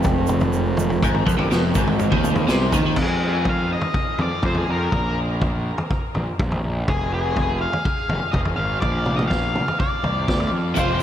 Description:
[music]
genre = psychedelic rock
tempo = 123 BPM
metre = 4/4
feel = straight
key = F dorian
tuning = A4 = 439 Hz
[part]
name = tonewheel organ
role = sustained chords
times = 0.0-2.9, 10.8-11.0 s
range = F3 to F5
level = -29 LUFS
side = right 3 dB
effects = slow rotary speaker
[part]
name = overdriven electric guitar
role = riff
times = 0.0-3.0, 10.7-11.0 s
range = F2 to F4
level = -24 LUFS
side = equal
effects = flanger
[part]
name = fuzz picked electric bass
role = bass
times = 0.0-11.0 s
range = F1 to F2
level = -23 LUFS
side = equal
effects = overdrive
[part]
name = vintage drum kit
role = drums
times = 0.0-10.9 s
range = crash cymbal, kick drum, snare drum, toms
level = -23 LUFS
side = equal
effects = none
[part]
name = tube shaker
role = percussion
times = 0.0-2.8, 10.8-11.0 s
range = none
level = -41 LUFS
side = right 15 dB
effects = none
[part]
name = octave-fuzz lead guitar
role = melody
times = 3.0-11.0 s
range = Ab4 to F5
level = -25 LUFS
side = left 2 dB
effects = distortion, diffuse ambient delay
[sound]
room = moderate huge ambient reverb, RT60 8.4 s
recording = dreamy mix soaked in reverb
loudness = -19 LUFS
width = side -10 dB against mid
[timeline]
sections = 0.0-3.0 A section; 3.0-11.0 B section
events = none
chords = 0.0 Fm; 3.0 Fm7; 4.9 N.C.; 6.9 Fm; 8.8 Bb

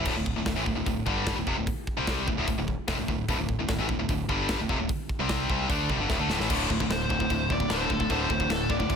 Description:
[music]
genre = heavy metal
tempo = 150 BPM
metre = 4/4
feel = straight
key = unclear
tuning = A4 = 440 Hz
[part]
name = heavy high-gain guitar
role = riff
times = 0.0-9.0 s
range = D2 to D4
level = -31 LUFS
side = right 12 dB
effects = distortion
[part]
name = tight distorted guitar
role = riff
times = 0.0-9.0 s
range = D2 to D4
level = -30 LUFS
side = left 12 dB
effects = distortion
[part]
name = growling fingered electric bass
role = bass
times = 0.0-9.0 s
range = D1 to D2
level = -33 LUFS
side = equal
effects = overdrive
[part]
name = tight metal drum kit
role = drums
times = 0.1-9.0 s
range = crash cymbal, hi-hat, kick drum, snare drum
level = -31 LUFS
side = equal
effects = none
[part]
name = overdriven electric guitar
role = riff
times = 6.5-9.0 s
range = D2 to D3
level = -34 LUFS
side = equal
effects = none
[part]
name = high-gain lead guitar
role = melody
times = 6.9-9.0 s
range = A4 to D5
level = -29 LUFS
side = left 1 dB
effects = distortion
[sound]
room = small room reverb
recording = none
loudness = -25 LUFS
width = side -6 dB against mid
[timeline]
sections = 0.0-6.5 A section; 6.5-9.0 B section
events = drum fill 6.1-6.5; lead electric guitar solo 6.5-9.0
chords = 0.0 Dm; 6.5 D5

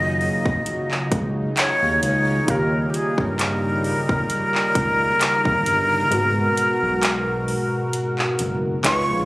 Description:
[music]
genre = contemporary R&B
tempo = 66 BPM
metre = 4/4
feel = swing 54% on 16ths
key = unclear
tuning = A4 = 440 Hz
[part]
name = breathy jazz flute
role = melody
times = 0.0-9.3 s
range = G4 to C#6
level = -21 LUFS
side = equal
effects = tape echo
[part]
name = warm analog keys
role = accompaniment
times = 0.0-9.3 s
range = G#2 to C#5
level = -27 LUFS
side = equal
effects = chorus
[part]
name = warm analog pad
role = sustained chords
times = 0.0-9.3 s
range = B2 to A#4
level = -26 LUFS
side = equal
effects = chorus
[part]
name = smooth synth bass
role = bass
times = 0.0-9.3 s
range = F#1 to G2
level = -26 LUFS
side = equal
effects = none
[part]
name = trap drum kit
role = drums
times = 0.2-9.1 s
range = handclaps, hi-hat, kick drum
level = -23 LUFS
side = equal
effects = none
[sound]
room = light reverb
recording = recorded on a phone in the room, club reverb, compression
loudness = -18 LUFS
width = side -19 dB against mid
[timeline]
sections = 0.0-9.3 A section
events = kick muted 6.1-9.3; synth keys fill 8.4-9.3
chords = 0.0 D#m7; 2.5 D#7; 6.1 G#m9

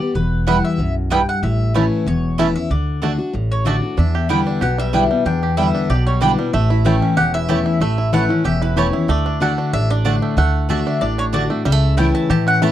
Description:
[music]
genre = bluegrass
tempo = 188 BPM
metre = 4/4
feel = straight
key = D major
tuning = A4 = 440 Hz
[part]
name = mandolin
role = melody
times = 0.0-12.7 s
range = B4 to A5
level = -24 LUFS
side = left 2 dB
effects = none
[part]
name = picked steel-string acoustic guitar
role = accompaniment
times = 0.0-12.7 s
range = E2 to G4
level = -19 LUFS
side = left 3 dB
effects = none
[part]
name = upright bass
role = bass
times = 0.1-12.7 s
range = E1 to A2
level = -20 LUFS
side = right 1 dB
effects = none
[part]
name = bluegrass banjo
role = melody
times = 0.5-12.7 s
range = G3 to G4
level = -25 LUFS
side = right 8 dB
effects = none
[part]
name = mandolin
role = stabs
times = 0.5-12.7 s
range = A3 to A5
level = -21 LUFS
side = right 6 dB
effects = none
[sound]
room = light reverb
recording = dry, close 1970s-style studio recording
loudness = -15 LUFS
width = side -12 dB against mid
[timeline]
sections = 0.0-4.0 A section; 4.0-12.7 B section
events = none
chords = 0.2 Em; 1.4 A; 2.7 D; 4.0 Em7; 6.5 A; 9.1 D; 11.7 A/C#

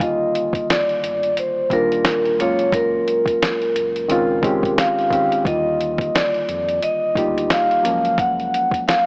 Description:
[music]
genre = lo-fi hip hop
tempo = 88 BPM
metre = 4/4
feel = swing 59% on 16ths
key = Eb major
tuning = A4 = 440 Hz
[part]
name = vibraphone with medium mallets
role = melody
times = 0.0-9.1 s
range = Bb4 to Gb5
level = -18 LUFS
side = equal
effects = none
[part]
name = reed electric piano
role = accompaniment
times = 0.0-9.1 s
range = D3 to G4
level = -22 LUFS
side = equal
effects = cassette tape
[part]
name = sub bass with octave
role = bass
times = 0.0-8.5 s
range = Eb1 to F2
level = -36 LUFS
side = equal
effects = transformer saturation
[part]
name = dusty soul sampler-style drum kit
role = drums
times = 0.0-9.1 s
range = hi-hat, kick drum, snare drum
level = -22 LUFS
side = equal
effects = none
[sound]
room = moderate plate reverb, RT60 3.2 s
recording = worn, warbling old tape, cassette tape, warbly pitch drift, small speaker sound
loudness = -16 LUFS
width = side -32 dB against mid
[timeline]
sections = 0.0-9.1 A section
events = none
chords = 0.0 Ebmaj9; 2.4 Gbmaj9; 4.1 Dbmaj9; 5.5 Ebmaj9; 7.8 Gbmaj9

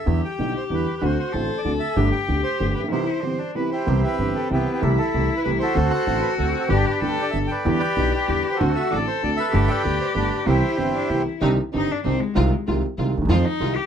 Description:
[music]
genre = tango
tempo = 191 BPM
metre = 3/4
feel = rubato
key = C major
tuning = A4 = 440 Hz
[part]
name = bandoneon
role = melody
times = 0.0-11.2 s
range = B3 to G5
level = -25 LUFS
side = right 3 dB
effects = none
[part]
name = clear cello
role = second line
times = 0.1-13.9 s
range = Ab3 to A4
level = -26 LUFS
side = left 6 dB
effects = none
[part]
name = warm upright piano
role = accompaniment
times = 0.1-13.7 s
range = G1 to G4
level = -24 LUFS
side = right 2 dB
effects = none
[part]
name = upright bass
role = bass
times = 0.1-13.7 s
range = G1 to F2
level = -24 LUFS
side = equal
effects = none
[part]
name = rich symphonic string section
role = stabs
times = 11.4-13.7 s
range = Ab3 to F4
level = -28 LUFS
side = equal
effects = none
[sound]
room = little or no reverb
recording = close, detailed microphones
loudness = -19 LUFS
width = side -8 dB against mid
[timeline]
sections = 0.0-3.9 A section; 3.9-11.4 A section; 11.4-13.9 B section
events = break 2.9-3.9; cello solo 11.4-13.9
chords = 0.1 Em7; 1.0 D7; 2.0 Gadd9; 2.9 Cmaj7; 4.8 Am7/C; 5.8 D7; 6.7 G; 7.7 Em7; 8.6 D7; 9.5 Gadd9; 10.5 Cmaj7; 11.4 Cmadd9; 12.4 Ab6/C; 13.3 Fm7

